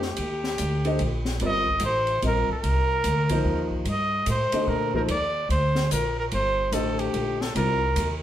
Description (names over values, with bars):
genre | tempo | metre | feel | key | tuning
modal jazz | 146 BPM | 3/4 | swing 64% on 8ths | C dorian | A4 = 442 Hz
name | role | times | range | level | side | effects
clear trumpet | melody | 0.0-8.1 s | G4 to Eb5 | -26 LUFS | equal | none
upright bass | bass | 0.0-8.2 s | G1 to Bb2 | -27 LUFS | equal | none
open jazz drum kit | drums | 0.0-8.1 s | hi-hat, kick drum, ride cymbal, snare drum | -33 LUFS | equal | none
warm grand piano | accompaniment | 0.9-7.8 s | D3 to Eb5 | -28 LUFS | left 1 dB | none
room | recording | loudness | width
wet studio reverb, RT60 0.8 s | band playing live in one room | -22 LUFS | side -11 dB against mid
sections
0.0-8.2 A section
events
none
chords
0.0 Cm9